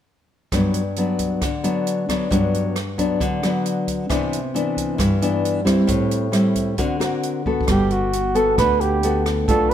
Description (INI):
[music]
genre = bossa nova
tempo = 134 BPM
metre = 4/4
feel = straight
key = G major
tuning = A4 = 440 Hz
[part]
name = nylon-string guitar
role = accompaniment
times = 0.5-9.7 s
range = G2 to Bb4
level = -19 LUFS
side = left 1 dB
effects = none
[part]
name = open jazz drum kit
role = drums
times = 0.5-9.7 s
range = hi-hat, kick drum, rim click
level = -27 LUFS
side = right 1 dB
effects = none
[part]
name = breathy flugelhorn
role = melody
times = 7.7-9.7 s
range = F#4 to B4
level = -20 LUFS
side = right 3 dB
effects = none
[part]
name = upright bass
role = bass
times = 7.7-9.7 s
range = G1 to D2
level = -23 LUFS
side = right 1 dB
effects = none
[sound]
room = light reverb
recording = none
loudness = -18 LUFS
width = side -10 dB against mid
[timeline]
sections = 0.5-7.7 A section; 7.7-9.7 B section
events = drum fill 7.5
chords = 0.5 Gmaj7; 4.1 Cmaj9; 5.9 Am7; 6.8 D7b13; 7.7 Gmaj9